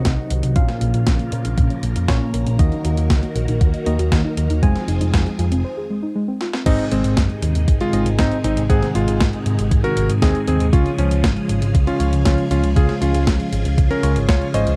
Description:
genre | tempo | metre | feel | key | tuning
italo disco | 118 BPM | 4/4 | straight | unclear | A4 = 440 Hz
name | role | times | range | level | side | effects
phased string machine | sustained chords | 0.0-14.8 s | C3 to Bb4 | -29 LUFS | equal | ensemble chorus, phaser
tine electric piano | stabs | 0.0-14.8 s | Ab2 to Ab5 | -28 LUFS | equal | overdrive
picked electric bass | bass | 0.0-14.8 s | F1 to Bb2 | -22 LUFS | equal | none
soft round pluck | arpeggios | 0.1-6.6 s | Ab3 to Gb5 | -29 LUFS | equal | chorus, tape echo
clean 12-bit digital drum machine | drums | 0.1-14.8 s | crash cymbal, hi-hat, snare drum | -28 LUFS | equal | overdrive, high-pass filter on hats, high-pass filter on snare, high-pass filter on cymbals, high-pass filter on room
electronic kick drum | drums | 0.1-14.4 s | none | -20 LUFS | equal | overdrive
warm electric grand piano | melody | 6.7-14.7 s | F3 to Eb5 | -24 LUFS | equal | none
room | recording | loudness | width
little or no reverb | dry, close 1970s-style studio recording | -18 LUFS | mono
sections
0.0-6.7 A section; 6.7-14.8 B section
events
filter sweep on synth arpeggio sound 0.0-6.7; filter sweep on string machine 0.0-6.7; break 5.6-6.7; drum fill 6.4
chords
0.0 Cdim; 0.6 Bbm; 2.6 Ebm; 4.6 Fm7; 6.7 Ab; 10.7 Db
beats
0.05 | 0.56 1.07 1.58 2.08 | 2.59 3.10 3.61 4.12 | 4.63 5.14 5.64 6.15 | 6.66 7.17 7.68 8.19 | 8.70 9.20 9.71 10.22 | 10.73 11.24 11.75 12.25 | 12.76 13.27 13.78 14.29

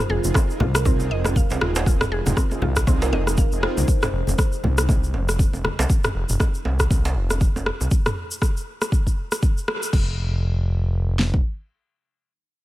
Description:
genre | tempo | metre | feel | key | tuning
afro house | 119 BPM | 4/4 | swing 57% on 16ths | F minor | A4 = 440 Hz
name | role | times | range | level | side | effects
ethereal airy pad | sustained chords | 0.0-5.9 s | C3 to F4 | -34 LUFS | equal | ensemble chorus, built-in reverb, sidechain pumping
mallet-like synth pluck | arpeggios | 0.1-3.7 s | C4 to F5 | -31 LUFS | right 1 dB | chorus, sidechain pumping, tape echo
smooth gliding synth bass | bass | 0.1-11.4 s | Eb1 to C2 | -23 LUFS | equal | sidechain pumping
djembe | percussion | 0.1-7.9 s | none | -30 LUFS | right 3 dB | none
mellow synth brass | stabs | 0.2-3.9 s | C4 to Ab4 | -33 LUFS | right 3 dB | chorus, sidechain pumping, tape echo
congas | percussion | 0.2-5.8 s | none | -27 LUFS | left 1 dB | none
tube shaker | percussion | 0.2-9.9 s | none | -33 LUFS | equal | none
deep house drum kit | drums | 0.4-11.4 s | kick drum, snare drum | -20 LUFS | equal | none
deep house drum kit | drums | 0.4-10.0 s | crash cymbal, rim click, toms | -26 LUFS | equal | none
kalimba | melody | 0.7-3.8 s | Bb4 to C5 | -32 LUFS | right 2 dB | tape echo
room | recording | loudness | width
small room ambience | none | -19 LUFS | side -16 dB against mid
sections
0.0-9.9 A section; 9.9-12.6 B section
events
drop 0.0-9.9; band accent 9.7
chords
0.0 Fm7; 9.9 N.C.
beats
0.35 0.85 1.36 | 1.86 2.37 2.87 3.38 | 3.88 4.38 4.89 5.39 | 5.90 6.40 6.91 7.41 | 7.91 8.42 8.92 9.43 | 9.93 10.44 10.94

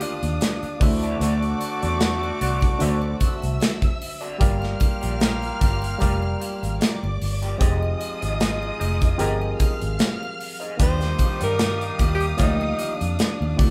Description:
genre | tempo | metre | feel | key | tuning
lush 1970s-style soul | 75 BPM | 4/4 | swing 54% on 16ths | unclear | A4 = 440 Hz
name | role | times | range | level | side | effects
breathy tenor saxophone | melody | 0.0-4.0, 10.8-13.7 s | D4 to C5 | -31 LUFS | equal | none
warm studio string section | second line | 0.0-13.7 s | D5 to F6 | -35 LUFS | equal | none
barky reed electric piano | accompaniment | 0.0-13.7 s | D3 to F5 | -33 LUFS | equal | overdrive
electric guitar through a small old amp | riff | 0.0-13.4 s | Bb3 to Eb5 | -38 LUFS | equal | wah
mellow horn section | stabs | 0.0-13.7 s | F3 to Bb4 | -35 LUFS | equal | none
modern studio drum kit | drums | 0.0-13.7 s | hi-hat, kick drum, snare drum | -25 LUFS | equal | none
triangle | percussion | 0.0-13.7 s | none | -46 LUFS | equal | none
vintage muted fingered electric bass | bass | 0.2-13.7 s | F1 to G2 | -28 LUFS | equal | none
room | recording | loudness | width
moderate studio reverb, RT60 0.8 s | band playing live in one room | -23 LUFS | mono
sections
0.0-13.7 A section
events
none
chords
0.0 Ebmaj9; 0.8 D7; 4.4 Gm7; 7.6 Fm7; 10.8 Ebmaj9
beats
0.41 | 1.21 2.01 2.81 3.61 | 4.41 5.21 6.01 6.81 | 7.61 8.40 9.20 10.00 | 10.80 11.60 12.40 13.20

